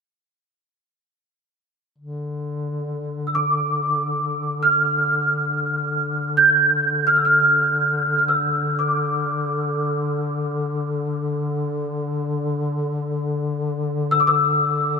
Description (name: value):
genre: caucasian folk, Caucasian lament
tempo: free time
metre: none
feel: none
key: D minor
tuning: A4 = 440 Hz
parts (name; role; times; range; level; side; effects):
- mellow duduk; drone; 2.0-15.0 s; D3; -24 LUFS; left 2 dB; stereo widening
- large celesta; melody; 3.3-15.0 s; D6 to G6; -18 LUFS; right 1 dB; ensemble chorus
room: wet huge ambient reverb, RT60 6.3 s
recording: dreamy mix soaked in reverb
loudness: -19 LUFS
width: side -5 dB against mid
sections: 2.0-15.0 A section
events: none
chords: none